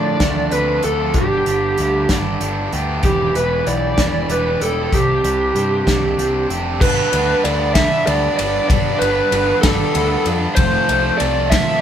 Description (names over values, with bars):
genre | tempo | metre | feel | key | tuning
indie rock | 64 BPM (dotted quarters) | 6/8 | straight | G mixolydian | A4 = 439 Hz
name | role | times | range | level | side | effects
lead guitar through a small cranked amp | melody | 0.0-11.8 s | G4 to E5 | -18 LUFS | equal | overdrive
raw garage guitar | riff | 0.0-11.8 s | D3 to B4 | -25 LUFS | left 2 dB | overdrive
sludgy distorted guitar | riff | 0.0-11.8 s | E2 to B4 | -23 LUFS | right 4 dB | overdrive
growling picked electric bass | bass | 0.0-11.6 s | E1 to A2 | -23 LUFS | equal | overdrive
loose indie drum kit | drums | 0.2-11.7 s | crash cymbal, hi-hat, kick drum, ride cymbal, snare drum | -20 LUFS | equal | none
room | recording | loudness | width
moderate studio reverb, RT60 0.6 s | band playing live in one room | -15 LUFS | side -9 dB against mid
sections
0.0-6.8 A section; 6.8-11.8 B section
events
none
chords
0.0 Dm7; 1.1 G; 3.0 Em7; 4.9 Csus2; 6.8 G; 10.6 F